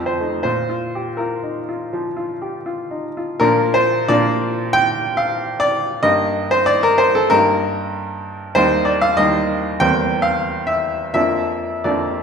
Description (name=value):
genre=classical, romantic character piece for solo piano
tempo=77-98 BPM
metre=4/4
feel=rubato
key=Bb major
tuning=A4 = 436 Hz
part: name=bright baby grand piano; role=solo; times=0.0-12.2 s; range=Eb2 to G5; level=-16 LUFS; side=equal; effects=none
room=wet large studio reverb, RT60 1.4 s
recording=heard from further back in the room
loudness=-16 LUFS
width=side -6 dB against mid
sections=0.0-3.4 A section; 3.4-12.2 A section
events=none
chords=0.5 Bb5; 3.4 Bb; 6.0 Eb/G; 8.6 Eb; 9.8 C7/E; 11.1 Bb/F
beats=| 0.45 1.19 1.94 2.66 | 3.41 4.08 4.75 5.40 | 6.04 6.68 7.31 7.93 | 8.55 9.17 9.81 10.46 | 11.15 11.85